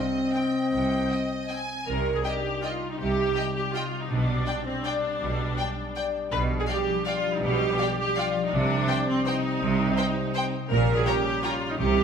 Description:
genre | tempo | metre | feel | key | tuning
classical, orchestral ballroom waltz | 163 BPM | 3/4 | uneven beats, rubato | C minor | A4 = 442 Hz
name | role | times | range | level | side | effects
rich studio violin section | melody | 0.0-11.5 s | G5 to Bb5 | -36 LUFS | left 4 dB | none
bright clarinet | second line | 0.0-1.7 s | C4 | -39 LUFS | equal | none
clear oboe | second line | 0.0-1.7 s | Eb5 | -37 LUFS | right 1 dB | none
clear symphonic violin section | second line | 0.0-11.5 s | C5 to Ab5 | -35 LUFS | left 1 dB | none
bright studio viola section | accompaniment | 0.0-12.0 s | C4 to B4 | -28 LUFS | right 2 dB | none
mellow French horn section | sustained chords | 0.0-12.0 s | E3 to Eb4 | -31 LUFS | left 2 dB | none
concert harp | arpeggios | 0.0-12.0 s | Bb2 to D5 | -33 LUFS | left 6 dB | none
clear symphonic cello section | bass | 0.7-12.0 s | Bb2 to C3 | -31 LUFS | right 3 dB | none
rich symphonic double bass section | bass | 0.7-12.0 s | Bb1 to C2 | -32 LUFS | right 3 dB | none
timpani | percussion | 11.8-12.0 s | C3 | -30 LUFS | equal | none
room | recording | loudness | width
wet scoring stage reverb, RT60 1.9 s | none | -24 LUFS | side -7 dB against mid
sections
0.0-1.9 A section; 1.9-12.0 B section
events
none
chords
0.0 Cm; 4.1 G/B; 6.3 G7/B; 8.5 Cm; 10.7 Gdim/Bb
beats
0.35 | 0.73 1.11 1.50 | 1.88 2.25 2.63 | 3.00 3.36 3.75 | 4.11 4.47 4.85 | 5.22 5.58 5.96 | 6.33 6.69 7.07 | 7.43 7.80 8.18 | 8.53 8.89 9.27 | 9.62 9.98 10.36 | 10.71 11.07 11.44 | 11.80

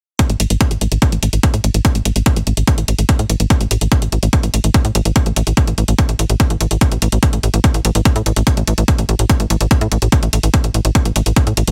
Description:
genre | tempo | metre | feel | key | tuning
psychedelic trance | 145 BPM | 4/4 | straight | unclear | A4 = 440 Hz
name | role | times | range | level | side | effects
electronic hi-hat | drums | 0.2-11.7 s | none | -24 LUFS | equal | overdrive, small room ambience
electronic kick drum | drums | 0.2-11.4 s | none | -15 LUFS | equal | small room ambience
tight sequencer bass | bass | 0.3-11.7 s | A1 to A2 | -18 LUFS | equal | none
room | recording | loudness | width
little or no reverb | none | -15 LUFS | mono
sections
0.2-11.7 A section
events
none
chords
none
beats
| 0.19 0.61 1.02 1.43 | 1.85 2.26 2.67 3.09 | 3.50 3.92 4.33 4.74 | 5.16 5.57 5.99 6.40 | 6.81 7.23 7.64 8.05 | 8.47 8.88 9.29 9.71 | 10.12 10.54 10.95 11.36

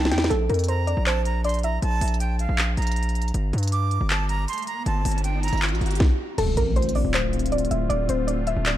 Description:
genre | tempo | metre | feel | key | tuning
hip hop, trap | 158 BPM | 4/4 | half-time | D minor | A4 = 439 Hz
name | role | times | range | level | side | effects
soft round pluck | melody | 0.0-1.8, 6.4-8.8 s | A4 to G5 | -27 LUFS | equal | chorus, tape echo
breathy bright jazz flute | second line | 0.0-5.6 s | F5 to D6 | -30 LUFS | right 4 dB | tape echo
distorted 808-style bass | bass | 0.0-8.8 s | D1 to G2 | -24 LUFS | equal | distortion
trap drum kit | drums | 0.1-8.7 s | crash cymbal, handclaps, hi-hat, kick drum, snare drum | -26 LUFS | equal | none
riser and impact | sound effects | 4.6-7.9 s | none | -30 LUFS | equal | none
sweeping resonant pad | sustained chords | 6.4-8.8 s | D3 to F4 | -28 LUFS | left 5 dB | lush chorus
room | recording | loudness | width
digital ambience | dark, warm production | -21 LUFS | side -12 dB against mid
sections
0.0-6.4 A section; 6.4-8.8 B section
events
drum fill 0.0-0.3; riser 4.6-6.4; impact 6.4-7.9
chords
0.3 Bb5; 3.3 N.C.; 6.4 Dm7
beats
| 0.30 0.69 1.06 1.44 | 1.82 2.20 2.58 2.96 | 3.34 3.72 4.10 4.48 | 4.86 5.24 5.62 6.00 | 6.38 6.76 7.14 7.52 | 7.90 8.28 8.66

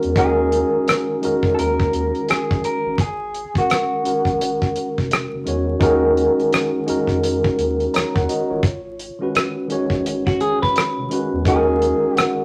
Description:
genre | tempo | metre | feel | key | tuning
R&B, neo-soul | 85 BPM | 4/4 | swing 61% on 16ths | Eb minor | A4 = 440 Hz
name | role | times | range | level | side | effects
tine electric piano | accompaniment | 0.0-12.4 s | Eb3 to Bb5 | -22 LUFS | equal | none
round analog bass | bass | 0.0-11.9 s | F1 to F2 | -30 LUFS | equal | none
damped 70s drum kit | drums | 0.0-12.4 s | hi-hat, kick drum, rim click | -23 LUFS | equal | none
electric guitar through a small old amp | melody | 0.2-4.9, 11.5-12.4 s | Gb4 to Bb4 | -27 LUFS | equal | none
semi-hollow electric guitar | second line | 10.3-11.4 s | Gb4 to Cb5 | -23 LUFS | equal | none
room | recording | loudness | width
moderate studio reverb, RT60 0.5 s | vinyl crackle | -19 LUFS | mono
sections
0.0-12.4 A section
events
none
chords
0.2 Ebm7; 3.0 Ab5; 5.8 Ebm7; 8.6 Abm7; 11.5 Ebm7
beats
| 0.16 0.87 1.57 2.28 | 2.98 3.69 4.39 5.10 | 5.81 6.51 7.22 7.92 | 8.63 9.34 10.04 10.75 | 11.45 12.16

